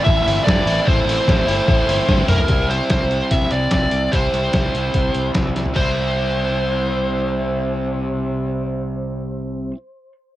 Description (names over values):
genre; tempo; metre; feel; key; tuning
indie rock; 147 BPM; 4/4; straight; C major; A4 = 441 Hz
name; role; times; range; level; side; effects
smooth overdriven lead guitar; melody; 0.0-9.7 s; Bb4 to E5; -22 LUFS; equal; cassette tape, analog delay
biting overdriven guitar; riff; 0.0-9.8 s; A2 to E4; -22 LUFS; equal; none
growling fingered electric bass; bass; 0.1-9.7 s; G1 to G2; -24 LUFS; equal; overdrive
trip hop sampler-style drum kit; drums; 0.1-5.9 s; crash cymbal, hi-hat, kick drum, snare drum, toms; -19 LUFS; equal; cassette tape
room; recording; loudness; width
light reverb; home recording on cassette; -16 LUFS; side -14 dB against mid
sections
0.0-2.5 A section; 2.5-5.8 B section; 5.8-9.0 C section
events
drum fill 2.1-2.5, 5.5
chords
0.0 Am; 2.5 C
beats
0.06 0.46 | 0.86 1.27 1.67 2.08 | 2.48 2.89 3.30 3.71 | 4.12 4.52 4.93 5.34 | 5.75 6.16 6.57 6.99 | 7.40 7.81 8.22 8.63